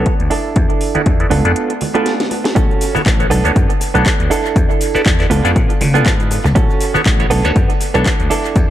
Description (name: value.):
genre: filtered disco house.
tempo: 120 BPM.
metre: 4/4.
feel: swing 56% on 16ths.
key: unclear.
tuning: A4 = 440 Hz.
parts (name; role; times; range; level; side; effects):
bright clav; accompaniment; 0.0-8.3 s; B3 to G#5; -20 LUFS; left 1 dB; phaser, sidechain pumping, low-pass filter.
direct-recorded clean electric guitar; riff; 0.0-8.7 s; B3 to A4; -19 LUFS; right 5 dB; vintage 12-bit sampler grit, sidechain pumping, low-pass filter, dub echo.
vintage slap bass; bass; 0.0-8.7 s; A1 to C#3; -17 LUFS; left 1 dB; tube saturation, sidechain pumping, low-pass filter.
electronic kick drum; drums; 0.1-8.7 s; none; -15 LUFS; left 1 dB; overdrive.
house drum kit; drums; 0.1-8.7 s; handclaps, hi-hat, shaker, snare drum; -22 LUFS; left 1 dB; overdrive, sidechain pumping on hats, sidechain pumping on perc, dub echo.
tambourine and congas; percussion; 0.1-8.7 s; none; -27 LUFS; right 2 dB; none.
room: light reverb.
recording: echo-heavy mix.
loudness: -12 LUFS.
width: side -12 dB against mid.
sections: 0.0-8.7 A section.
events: break 1.6-2.6; drum fill 2.1-2.6.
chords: 0.3 E7sus4; 1.3 C#7b9b13 (rootless); 2.6 A6; 3.3 Bm7; 4.3 E7sus4; 5.3 C#7b9b13; 6.6 A6; 7.3 Bm7.